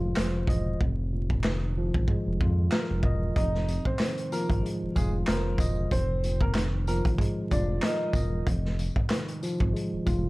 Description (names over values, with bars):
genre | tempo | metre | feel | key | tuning
hip hop, boom-bap hip-hop | 94 BPM | 4/4 | swing 56% on 16ths | F minor | A4 = 440 Hz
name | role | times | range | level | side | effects
tine electric piano | accompaniment | 0.0-10.3 s | F2 to Eb5 | -32 LUFS | equal | medium stereo tremolo, high-pass filter, low-pass filter
smooth synth bass | bass | 0.0-10.3 s | E1 to F2 | -29 LUFS | equal | none
raw garage drum kit | drums | 0.2-10.2 s | handclaps, hi-hat, kick drum, snare drum | -28 LUFS | equal | none
bright upright piano | melody | 3.4-8.1 s | Ab3 to Eb5 | -34 LUFS | equal | high-pass filter, low-pass filter, tape echo
tambourine | percussion | 3.7-10.2 s | none | -48 LUFS | left 6 dB | none
room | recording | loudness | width
light reverb | dark, warm production, vinyl crackle | -25 LUFS | side -21 dB against mid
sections
0.0-10.3 A section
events
hi-hats muted 0.8-3.4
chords
0.0 Fm7; 0.8 Bb7sus4/F; 3.4 Fm7; 5.9 Bb7sus4/F; 8.5 Fm7